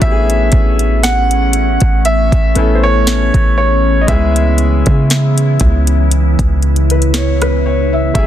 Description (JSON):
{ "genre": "contemporary R&B", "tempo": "59 BPM", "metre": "4/4", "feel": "swing 54% on 16ths", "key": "unclear", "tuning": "A4 = 437 Hz", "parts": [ { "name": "clear grand piano", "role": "melody", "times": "0.0-8.3 s", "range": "B#4 to F#5", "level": "-17 LUFS", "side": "right 1 dB", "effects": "ping-pong delay" }, { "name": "felt-muted upright piano", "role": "accompaniment", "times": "0.0-8.3 s", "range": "F#3 to E5", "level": "-19 LUFS", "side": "left 4 dB", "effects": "none" }, { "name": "glassy FM pad", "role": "sustained chords", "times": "0.0-8.3 s", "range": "C#3 to G#4", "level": "-19 LUFS", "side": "equal", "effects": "ensemble chorus, built-in reverb, sidechain pumping" }, { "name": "warm 808-style bass", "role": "bass", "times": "0.0-8.3 s", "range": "F#1 to C#3", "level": "-13 LUFS", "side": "equal", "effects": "none" }, { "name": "smooth R&B drum kit", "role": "drums", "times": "0.0-8.3 s", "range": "hi-hat, kick drum, rim click, snare drum", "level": "-14 LUFS", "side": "equal", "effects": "none" } ], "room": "digital ambience", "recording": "dense, heavily limited modern master", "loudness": "-10 LUFS", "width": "side -11 dB against mid", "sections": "0.0-8.3 A section", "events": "none", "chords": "0.0 Amaj9; 4.1 C#m7" }